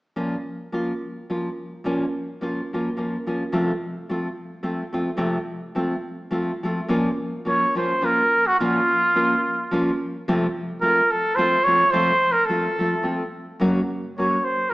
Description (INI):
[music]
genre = mexican folk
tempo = 107 BPM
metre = 3/4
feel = swing 55% on 8ths, rubato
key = Bb harmonic minor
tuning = A4 = 440 Hz
[part]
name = nylon-string guitar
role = accompaniment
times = 0.2-14.7 s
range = F2 to Gb4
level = -24 LUFS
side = equal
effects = none
[part]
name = clear trumpet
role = melody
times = 7.5-14.7 s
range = F4 to Db5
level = -19 LUFS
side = right 1 dB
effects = none
[sound]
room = wet recital hall reverb, RT60 1.6 s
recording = small speaker sound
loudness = -20 LUFS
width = side -19 dB against mid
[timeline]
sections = 0.2-6.9 A section; 6.9-14.7 B section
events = none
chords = 0.2 Bbm; 3.5 F; 6.9 Bbm; 10.3 F; 13.6 Gb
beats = | 0.16 0.73 1.29 | 1.86 2.42 2.98 | 3.53 4.08 4.63 | 5.19 5.75 6.32 | 6.90 7.47 8.04 | 8.60 9.16 9.72 | 10.27 10.82 11.38 | 11.92 12.47 13.03 | 13.60 14.16 14.72